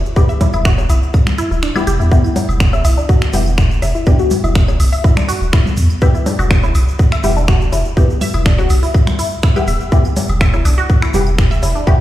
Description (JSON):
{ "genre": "minimal techno", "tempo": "123 BPM", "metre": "4/4", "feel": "straight", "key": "E minor", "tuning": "A4 = 444 Hz", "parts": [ { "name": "punchy sub bass", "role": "bass", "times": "0.0-11.7 s", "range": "D1 to E2", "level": "-15 LUFS", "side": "equal", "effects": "sidechain pumping" }, { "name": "tube shaker", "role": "percussion", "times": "0.1-12.0 s", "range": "none", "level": "-34 LUFS", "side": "right 4 dB", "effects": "none" }, { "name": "filtered dub chord stab", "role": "stabs", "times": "0.2-11.9 s", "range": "B3 to G4", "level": "-23 LUFS", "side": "left 2 dB", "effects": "phaser, ensemble chorus, ping-pong delay" }, { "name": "electronic kick drum", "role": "drums", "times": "0.2-12.0 s", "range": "none", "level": "-13 LUFS", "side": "equal", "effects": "none" }, { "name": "resonant blip pluck", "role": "riff", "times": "0.3-11.9 s", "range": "D4 to E5", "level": "-22 LUFS", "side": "left 1 dB", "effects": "phaser, sidechain pumping, digital delay" }, { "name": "garage drum kit", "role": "drums", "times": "0.4-11.7 s", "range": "finger snaps, hi-hat", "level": "-24 LUFS", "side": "equal", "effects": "none" }, { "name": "bongos, congas, claves and woodblock", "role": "percussion", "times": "0.4-12.0 s", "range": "none", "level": "-23 LUFS", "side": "left 1 dB", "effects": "ping-pong delay" } ], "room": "digital ambience", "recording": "played on a big sound system in a bare room, large studio reverb", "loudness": "-11 LUFS", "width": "side -14 dB against mid", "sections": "0.0-12.0 A section", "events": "kick drops out 1.6-2.1", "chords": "0.0 E5" }